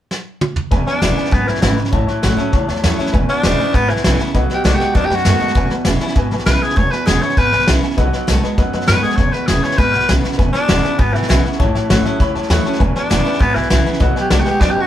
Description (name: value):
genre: rockabilly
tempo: 199 BPM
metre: 4/4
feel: straight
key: E major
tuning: A4 = 441 Hz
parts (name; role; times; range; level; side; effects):
- vintage brush drum kit; drums; 0.1-14.7 s; hi-hat, kick drum, snare drum, toms; -18 LUFS; equal; none
- honky-tonk upright piano; accompaniment; 0.7-14.9 s; B4 to B5; -26 LUFS; left 4 dB; none
- picked steel-string acoustic guitar; accompaniment; 0.7-14.9 s; E2 to F#4; -24 LUFS; left 2 dB; none
- electric guitar through a small old amp; riff; 0.7-14.9 s; E2 to G#3; -23 LUFS; right 3 dB; none
- upright bass; bass; 0.7-14.9 s; E1 to F#2; -18 LUFS; equal; none
- raspy tenor saxophone; melody; 0.9-14.9 s; E3 to C#5; -17 LUFS; left 1 dB; none
room: moderate studio reverb, RT60 0.5 s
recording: band playing live in one room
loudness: -13 LUFS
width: side -12 dB against mid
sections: 0.7-10.4 A section; 10.4-14.9 A section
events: drum fill 0.1-0.7, 14.6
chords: 0.0 N.C.; 0.7 E; 1.9 A; 3.1 E; 4.3 B7; 5.6 E; 8.0 B7; 9.2 E; 11.6 A; 12.8 E; 14.0 B7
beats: 0.11 0.41 | 0.72 1.02 1.32 1.63 | 1.93 2.23 2.54 2.84 | 3.14 3.44 3.75 4.05 | 4.35 4.65 4.96 5.26 | 5.56 5.86 6.16 6.47 | 6.77 7.07 7.37 7.67 | 7.97 8.28 8.58 8.88 | 9.18 9.48 9.79 10.09 | 10.39 10.69 10.99 11.29 | 11.59 11.90 12.20 12.50 | 12.80 13.10 13.40 13.71 | 14.01 14.31 14.61